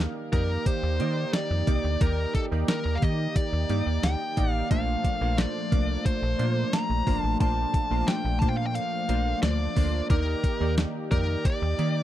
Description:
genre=1980s-style pop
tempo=89 BPM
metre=4/4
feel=straight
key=unclear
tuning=A4 = 442 Hz
part: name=chorused retro synth keys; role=accompaniment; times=0.0-12.0 s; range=Bb2 to F5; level=-32 LUFS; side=right 4 dB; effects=none
part: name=slap-like FM bass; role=bass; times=0.0-12.0 s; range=G1 to Eb3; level=-27 LUFS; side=equal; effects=none
part: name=bluesy overdriven lead guitar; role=melody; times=0.3-12.0 s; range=A4 to Bb5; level=-31 LUFS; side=left 1 dB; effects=distortion, tape echo
part: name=clean 12-bit digital drum machine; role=drums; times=0.3-11.9 s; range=hi-hat, kick drum, snare drum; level=-26 LUFS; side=equal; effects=none
part: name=analog synth brass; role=stabs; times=0.7-12.0 s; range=Eb3 to G4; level=-34 LUFS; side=left 4 dB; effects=chorus
room=light reverb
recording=dry, close 1970s-style studio recording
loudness=-23 LUFS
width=side -13 dB against mid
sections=0.0-12.0 A section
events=none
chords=0.0 Ebmaj7; 4.7 Bbadd9; 10.1 Ebmaj7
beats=0.66 1.34 | 2.01 2.69 3.36 4.03 | 4.71 5.38 6.06 6.73 | 7.41 8.08 8.75 9.43 | 10.10 10.78 11.45

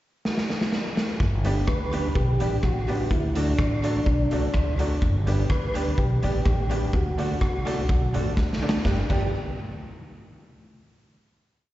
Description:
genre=ska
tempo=126 BPM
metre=4/4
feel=straight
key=G major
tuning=A4 = 440 Hz
part: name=raw garage drum kit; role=drums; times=0.3-9.2 s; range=crash cymbal, hi-hat, kick drum, rim click, snare drum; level=-26 LUFS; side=equal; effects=tape echo
part: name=upright bass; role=bass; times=1.2-9.3 s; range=G1 to A2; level=-26 LUFS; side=equal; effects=none
part: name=electric guitar through a small old amp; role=accompaniment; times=1.4-9.2 s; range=F#3 to A4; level=-33 LUFS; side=right 4 dB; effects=spring reverb, slapback echo
part: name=bright upright piano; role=stabs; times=1.4-9.3 s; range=D4 to D5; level=-34 LUFS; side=left 4 dB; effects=slapback echo
part: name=tonewheel organ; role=melody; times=1.7-9.3 s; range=D4 to B4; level=-30 LUFS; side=equal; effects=overdrive, slow rotary speaker, slapback echo
room=studio reverb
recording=live gig heard through the venue's PA, recital hall reverb, nothing above 7.8 kHz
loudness=-22 LUFS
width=side -15 dB against mid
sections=0.0-1.2 pickup bar; 1.2-8.8 head; 8.8-10.8 final chord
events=drum fill 0.3-1.2, 8.4-8.8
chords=0.0 N.C.; 1.2 G; 3.1 D; 5.0 G; 6.9 D; 8.8 G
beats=0.25 0.73 | 1.20 1.68 2.16 2.63 | 3.11 3.59 4.06 4.54 | 5.02 5.50 5.98 6.45 | 6.93 7.41 7.89 8.37 | 8.85

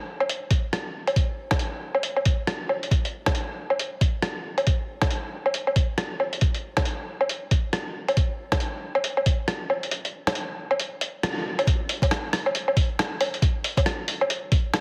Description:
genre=future garage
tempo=137 BPM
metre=4/4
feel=swing 60% on 16ths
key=none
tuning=none
part: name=lo-fi sampler-style drum kit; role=drums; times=0.2-14.8 s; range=hi-hat, rim click, woodblock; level=-28 LUFS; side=equal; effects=none
part: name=electronic kick drum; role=drums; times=0.5-14.6 s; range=none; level=-25 LUFS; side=equal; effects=none
room=moderate lush hall reverb, RT60 1.9 s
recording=heavily compressed radio sound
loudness=-25 LUFS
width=mono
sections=0.0-11.7 A section; 11.7-14.8 B section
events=kick drops out 9.9-11.7; band accent 11.2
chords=none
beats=0.28 0.72 | 1.16 1.60 2.03 2.47 | 2.91 3.35 3.79 4.22 | 4.66 5.10 5.54 5.97 | 6.41 6.85 7.29 7.73 | 8.16 8.60 9.04 9.48 | 9.92 10.36 10.79 11.23 | 11.67 12.11 12.54 12.98 | 13.42 13.86 14.30 14.73

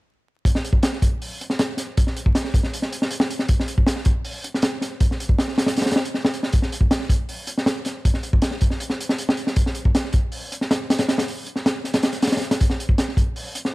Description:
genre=drum and bass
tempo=158 BPM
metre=4/4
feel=straight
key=none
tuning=none
part: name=crunchy breakbeat drum kit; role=drums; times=0.5-13.7 s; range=hi-hat, kick drum, snare drum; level=-19 LUFS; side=equal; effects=none
room=little or no reverb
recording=vinyl crackle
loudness=-19 LUFS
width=side -21 dB against mid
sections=0.5-13.7 A section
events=none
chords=none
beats=| 0.45 0.83 1.21 1.59 | 1.97 2.35 2.73 3.11 | 3.49 3.87 4.25 4.63 | 5.01 5.39 5.77 6.15 | 6.53 6.91 7.29 7.67 | 8.05 8.43 8.81 9.19 | 9.57 9.95 10.33 10.71 | 11.09 11.47 11.85 12.22 | 12.61 12.98 13.36

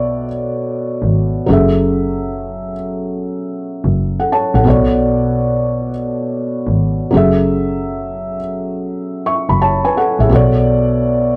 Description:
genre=lo-fi hip hop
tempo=85 BPM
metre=4/4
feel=swing 65% on 16ths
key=B dorian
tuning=A4 = 440 Hz
part: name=felt-muted upright piano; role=accompaniment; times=0.0-11.4 s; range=B2 to C#6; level=-18 LUFS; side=equal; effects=none
part: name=rich double bass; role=bass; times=0.0-11.4 s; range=F#1 to B1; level=-19 LUFS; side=equal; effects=none
room=moderate studio reverb, RT60 0.6 s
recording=none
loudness=-16 LUFS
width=mono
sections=0.0-11.4 A section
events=none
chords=0.0 Bm7; 1.5 F#m7; 4.7 Bm7; 7.1 F#m7; 10.3 Bm7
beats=0.42 1.13 | 1.83 2.54 3.25 3.95 | 4.66 5.36 6.07 6.77 | 7.48 8.19 8.89 9.60 | 10.30 11.01

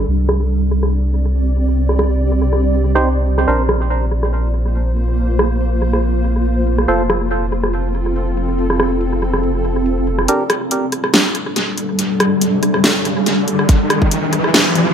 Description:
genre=deep dubstep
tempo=141 BPM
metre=4/4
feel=swing 54% on 16ths, half-time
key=G minor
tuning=A4 = 438 Hz
part: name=granular cloud pad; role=sustained chords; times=0.0-14.9 s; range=G3 to D5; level=-19 LUFS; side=equal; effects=built-in reverb
part: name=soft dub sub bass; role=bass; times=0.0-10.3 s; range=F1 to C2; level=-17 LUFS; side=equal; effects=none
part: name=dubstep drum kit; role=drums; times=0.1-14.8 s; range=hi-hat, rim click, snare drum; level=-18 LUFS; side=equal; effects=high-pass filter on hats, low-pass filter on hats, high-pass filter on snare, low-pass filter on snare, high-pass filter on room, low-pass filter on room, tape echo
part: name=percussive organ stab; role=stabs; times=3.0-3.6, 6.9-7.0, 10.3-10.4 s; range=D4 to C5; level=-20 LUFS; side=right 2 dB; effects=chorus, tape echo
part: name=riser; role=sound effects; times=11.8-14.9 s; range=none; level=-20 LUFS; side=equal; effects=none
part: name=electronic kick drum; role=drums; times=13.7-14.1 s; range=none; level=-12 LUFS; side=equal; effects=overdrive
room=light reverb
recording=echo-heavy mix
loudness=-14 LUFS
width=side -8 dB against mid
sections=0.0-10.3 A section; 10.3-14.9 B section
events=filter sweep on ambient pad 0.0-10.3, 10.3-14.9; build-up 10.3-14.9; riser 11.8-14.9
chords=0.1 C5; 3.5 Bbsus2; 6.9 F; 10.3 G5; 13.7 C5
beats=| 0.07 0.50 0.92 1.35 | 1.78 2.20 2.63 3.05 | 3.48 3.90 4.33 4.75 | 5.18 5.61 6.03 6.46 | 6.88 7.31 7.73 8.16 | 8.58 9.01 9.44 9.86 | 10.29 10.71 11.14 11.56 | 11.99 12.41 12.84 13.27 | 13.69 14.12 14.54

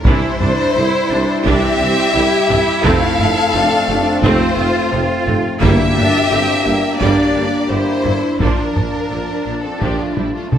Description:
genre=cinematic, epic orchestral film score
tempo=86 BPM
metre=4/4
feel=straight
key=unclear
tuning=A4 = 439 Hz
part: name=warm symphonic violin section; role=melody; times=0.0-10.6 s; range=E4 to F5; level=-19 LUFS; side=left 3 dB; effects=none
part: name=warm symphonic violin section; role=second line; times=0.0-10.6 s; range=G3 to A4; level=-22 LUFS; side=left 2 dB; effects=none
part: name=warm symphonic cello section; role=bass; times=0.0-10.6 s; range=Bb3 to G4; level=-22 LUFS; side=right 2 dB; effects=none
part: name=clear symphonic viola section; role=accompaniment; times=0.1-10.6 s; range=D3 to D4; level=-23 LUFS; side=right 1 dB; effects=none
part: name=mellow French horn section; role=sustained chords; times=0.1-10.6 s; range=F3 to E4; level=-22 LUFS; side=left 1 dB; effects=none
part: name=rich symphonic double bass section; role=bass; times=0.1-10.6 s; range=F1 to C2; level=-24 LUFS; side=right 3 dB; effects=none
part: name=warm tuba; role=bass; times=0.1-10.6 s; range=F1 to C2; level=-24 LUFS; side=right 4 dB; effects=none
part: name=taiko ensemble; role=drums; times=0.1-10.6 s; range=none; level=-20 LUFS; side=equal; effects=none
part: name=timpani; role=percussion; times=5.6-6.6 s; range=G2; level=-23 LUFS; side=equal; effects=none
room=moderate scoring stage reverb, RT60 2.0 s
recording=none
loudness=-13 LUFS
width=side -9 dB against mid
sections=0.1-10.6 A section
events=drum fill 10.2-10.6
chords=0.1 Cadd9; 2.8 F; 5.6 Gm; 8.4 Bb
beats=| 0.06 0.76 1.45 2.15 | 2.84 3.54 4.23 4.92 | 5.62 6.31 7.00 7.70 | 8.40 9.11 9.81 10.52

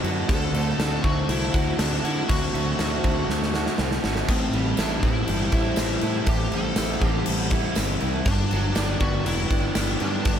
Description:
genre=rock, shoegaze and dream pop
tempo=120 BPM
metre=4/4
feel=straight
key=D mixolydian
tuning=A4 = 440 Hz
part: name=warbly tape-like pad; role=sustained chords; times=0.0-10.4 s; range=F#3 to A5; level=-34 LUFS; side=left 1 dB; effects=chorus, built-in reverb
part: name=overdriven electric guitar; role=riff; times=0.0-10.4 s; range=G2 to F#4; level=-29 LUFS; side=right 10 dB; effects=reverse reverb
part: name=thick fuzz guitar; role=riff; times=0.0-10.4 s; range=G2 to F#4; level=-30 LUFS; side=left 7 dB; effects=distortion, lush chorus
part: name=growling fingered electric bass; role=bass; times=0.0-10.4 s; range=E1 to D3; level=-28 LUFS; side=equal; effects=overdrive
part: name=huge arena drum kit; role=drums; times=0.0-10.4 s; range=crash cymbal, kick drum, snare drum, splash cymbal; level=-25 LUFS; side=equal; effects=none
part: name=smooth overdriven lead guitar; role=melody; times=0.3-10.4 s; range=C4 to A4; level=-31 LUFS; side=left 2 dB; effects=tape echo
part: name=tambourine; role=percussion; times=4.8-9.9 s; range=none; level=-39 LUFS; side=right 15 dB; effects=none
room=small room ambience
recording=none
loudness=-21 LUFS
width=side -9 dB against mid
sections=0.0-10.4 A section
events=drum fill 3.3-4.3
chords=0.0 D7; 4.3 Am7; 8.3 Gmaj7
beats=| 0.29 0.79 1.29 1.79 | 2.29 2.79 3.29 3.78 | 4.28 4.78 5.28 5.77 | 6.27 6.77 7.27 7.76 | 8.26 8.76 9.26 9.76 | 10.26

